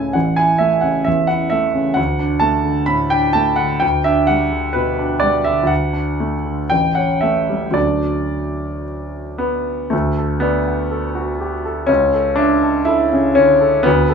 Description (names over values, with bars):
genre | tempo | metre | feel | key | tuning
classical, romantic character piece for solo piano | 54-68 BPM | 2/4 | rubato | D major | A4 = 440 Hz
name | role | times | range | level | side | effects
warm grand piano | solo | 0.0-14.1 s | A1 to B5 | -15 LUFS | equal | none
room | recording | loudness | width
moderate studio reverb, RT60 0.6 s | small room ambience | -15 LUFS | side -6 dB against mid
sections
0.0-9.9 A section; 9.9-14.1 B section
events
none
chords
0.2 A; 2.0 D5; 3.8 G/D; 5.7 D; 6.7 A7; 7.8 D; 11.9 A/C#